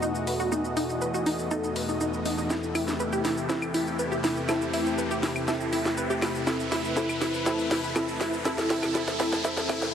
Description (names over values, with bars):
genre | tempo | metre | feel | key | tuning
melodic techno | 121 BPM | 4/4 | straight | unclear | A4 = 440 Hz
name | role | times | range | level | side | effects
lush unison pad | sustained chords | 0.0-9.9 s | B2 to D#5 | -32 LUFS | left 1 dB | chorus
wide unison pluck | arpeggios | 0.0-9.7 s | D#4 to B4 | -29 LUFS | equal | dub echo
filtered dub chord stab | stabs | 0.0-9.9 s | B3 to A4 | -34 LUFS | right 1 dB | analog chorus, cassette tape, dub echo
analog drone | drone | 0.0-9.9 s | E2 | -38 LUFS | equal | chorus
house drum kit | drums | 0.0-9.9 s | claves, hi-hat, shaker, snare drum | -32 LUFS | equal | overdrive, studio reverb
riser and swell | sound effects | 0.0-9.9 s | none | -36 LUFS | equal | none
room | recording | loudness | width
moderate huge ambient reverb, RT60 8.6 s | heavily compressed radio sound | -25 LUFS | side -8 dB against mid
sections
0.0-9.9 A section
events
build-up 0.0-9.9; riser 0.0-9.9; drum fill 2.5-9.9; swell 9.4-9.9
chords
0.0 B7; 2.5 C6; 6.5 Amadd9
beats
0.02 | 0.52 1.02 1.51 2.01 | 2.50 3.00 3.50 3.99 | 4.49 4.98 5.48 5.97 | 6.47 6.97 7.46 7.96 | 8.45 8.95 9.45